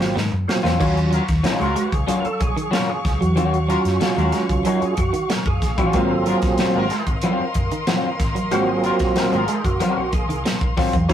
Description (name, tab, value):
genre	funk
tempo	93 BPM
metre	4/4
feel	straight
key	Eb dorian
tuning	A4 = 444 Hz
part	clean electric guitar	riff	0.0-11.1 s	Eb3 to Bb3	-27 LUFS	right 2 dB	vibrato effect
part	percussive tonewheel organ	stabs	0.0-11.1 s	Ab2 to Bb4	-22 LUFS	right 3 dB	overdrive, chorus vibrato, fast rotary speaker
part	hollow-body short-scale picked electric bass	bass	0.0-11.1 s	Gb1 to Ab2	-24 LUFS	equal	none
part	crisp fusion drum kit	drums	0.0-11.1 s	crash cymbal, hi-hat, kick drum, snare drum	-24 LUFS	equal	none
part	electric guitar at the edge of break-up	accompaniment	0.6-11.1 s	Gb3 to Gb4	-24 LUFS	left 4 dB	spring reverb
part	warm studio string section	sustained chords	0.8-11.1 s	Gb3 to Db6	-29 LUFS	equal	none
part	warm horn section	second line	1.1-9.7 s	Gb3 to Bb4	-26 LUFS	left 3 dB	none
room	light reverb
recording	rough rehearsal-room recording, vinyl crackle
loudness	-18 LUFS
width	side -10 dB against mid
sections	0.8-11.1 A section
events	drum fill 0.0-0.8; tonewheel organ solo 0.8-11.1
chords	0.0 Ab13; 0.8 Ebm9; 5.9 Ab13